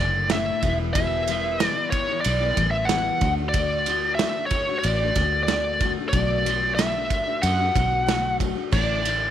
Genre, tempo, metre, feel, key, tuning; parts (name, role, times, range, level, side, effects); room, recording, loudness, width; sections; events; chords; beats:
folk rock and heartland rock; 93 BPM; 4/4; straight; D major; A4 = 440 Hz
biting lead guitar; melody; 0.0-9.3 s; C#5 to F#5; -24 LUFS; equal; overdrive, tape echo
picked steel-string acoustic guitar; accompaniment; 0.0-9.3 s; E2 to F#4; -30 LUFS; left 13 dB
fingered electric bass; bass; 0.0-9.3 s; E1 to F#2; -27 LUFS; equal
loose indie drum kit; drums; 0.3-9.2 s; crash cymbal, kick drum, ride cymbal, snare drum; -26 LUFS; right 3 dB
studio reverb; 1960s-style stereo; -20 LUFS; side -10 dB against mid
0.0-9.3 A section
0.0 Asus4; 0.6 Em; 3.2 D; 6.1 Bm7; 8.7 Asus4
0.32 | 0.96 1.61 2.25 2.90 | 3.54 4.19 4.84 5.49 | 6.13 6.78 7.43 8.08 | 8.73